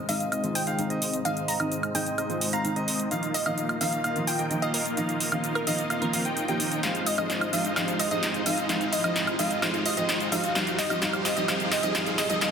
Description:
EDM, festival progressive house; 129 BPM; 4/4; straight; Eb major; A4 = 440 Hz
lush unison pad; sustained chords; 0.3-12.5 s; F3 to Ab4; -40 LUFS; left 1 dB
bright grand piano; arpeggios; 0.0-12.5 s; Eb5 to G5; -36 LUFS; left 1 dB; low-pass filter, tape echo
dense compressed supersaw; riff; 0.0-12.5 s; G3 to G5; -30 LUFS; equal; low-pass filter, tape echo
fat analog bass; bass; 0.0-12.5 s; Eb1 to F2; -43 LUFS; left 1 dB
riser; sound effects; 0.0-12.5 s; -36 LUFS; equal
glassy wavetable pluck; melody; 0.1-12.5 s; Bb4 to Bb5; -31 LUFS; equal; chorus, vintage 12-bit sampler grit, tape echo
felt-muted upright piano; accompaniment; 0.1-12.5 s; Ab2 to G4; -33 LUFS; right 2 dB
big-room dance drum kit; drums; 0.1-12.5 s; hi-hat, shaker, snare drum, woodblock; -29 LUFS; right 1 dB; high-pass filter on hats, high-pass filter on perc, high-pass filter on snare
moderate digital room reverb, RT60 1.0 s; dense, heavily limited modern master; -24 LUFS; side -7 dB against mid
0.0-12.5 A section
build-up 0.0-12.5; riser 0.0-12.5; filter sweep on supersaw synth 0.0-12.5; drum fill 6.8-12.5
0.0 Ab; 3.1 Ebsus2; 6.8 Fm7; 10.6 Cm

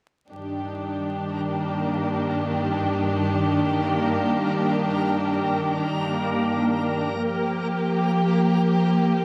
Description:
trip hop; free time; A4 = 441 Hz
warm studio string section; sustained chords; 0.3-9.2 s; G2 to G4; -24 LUFS; equal
backwards swelling texture; texture; 1.4-9.2 s; Bb3 to Bb4; -31 LUFS; equal; built-in reverb
wet spring reverb, RT60 2.3 s; vinyl crackle; -24 LUFS; mono
0.3-9.2 A section
0.3 Ebmaj7/G; 7.2 Gm7

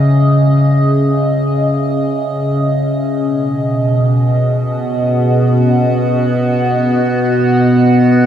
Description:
ambient; free time; A4 = 440 Hz
evolving wavetable pad; solo; 0.0-8.3 s; B2 to F#5; -11 LUFS; equal; chorus, built-in reverb, phaser, diffuse ambient delay
wet cathedral reverb, RT60 5.3 s; -11 LUFS; side -10 dB against mid
0.0-8.3 A section
0.0 C#madd9; 3.1 B

